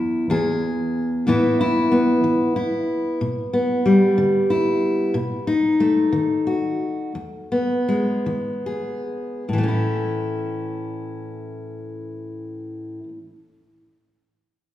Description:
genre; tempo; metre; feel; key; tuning
acoustic folk duo or small band; 46-62 BPM (dotted quarters); 6/8; straight; A major; A4 = 440 Hz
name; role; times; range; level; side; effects
open-back banjo; melody; 0.0-0.9 s; none; barely audible; none; none
fingerpicked steel-string acoustic guitar; accompaniment; 0.0-13.2 s; E2 to G#4; -19 LUFS; left 1 dB; none
room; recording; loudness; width
wet recital hall reverb, RT60 1.6 s; recorded in a church or concert hall; -19 LUFS; side -13 dB against mid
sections
0.0-1.3 A section; 1.3-9.5 B section; 9.5-14.7 C section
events
slowing down 5.1-9.5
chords
0.3 E6; 1.3 Asus2; 3.2 G/B; 5.1 B7; 7.2 E; 9.5 A

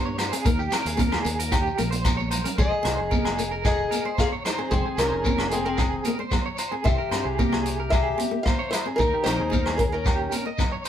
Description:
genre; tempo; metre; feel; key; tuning
highlife guitar band; 112 BPM; 4/4; straight; F minor; A4 = 440 Hz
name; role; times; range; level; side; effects
electric guitar at the edge of break-up; arpeggios; 0.0-10.9 s; G4 to Eb5; -30 LUFS; right 4 dB; tremolo
fingered electric bass; bass; 0.0-10.3 s; F1 to G2; -30 LUFS; equal; none
vintage drum kit; drums; 0.2-10.9 s; hi-hat, kick drum, rim click; -26 LUFS; equal; none
agogo bells; percussion; 0.2-10.9 s; none; -34 LUFS; left 3 dB; none
shekere; percussion; 0.2-10.9 s; none; -33 LUFS; left 2 dB; none
flamenco guitar; accompaniment; 0.3-10.6 s; Ab3 to Eb4; -33 LUFS; left 4 dB; none
congas; percussion; 0.5-10.7 s; none; -31 LUFS; right 2 dB; none
picked old ladder-braced acoustic guitar; melody; 2.6-10.4 s; C4 to F5; -27 LUFS; left 2 dB; none
warm alto saxophone; second line; 2.6-10.4 s; C4 to C5; -35 LUFS; left 7 dB; none
room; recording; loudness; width
moderate studio reverb, RT60 0.5 s; band playing live in one room; -22 LUFS; side -10 dB against mid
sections
0.0-2.6 A section; 2.6-10.9 B section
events
drum fill 1.9-2.6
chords
0.5 Eb; 2.6 Fm7; 6.9 C; 9.0 Eb

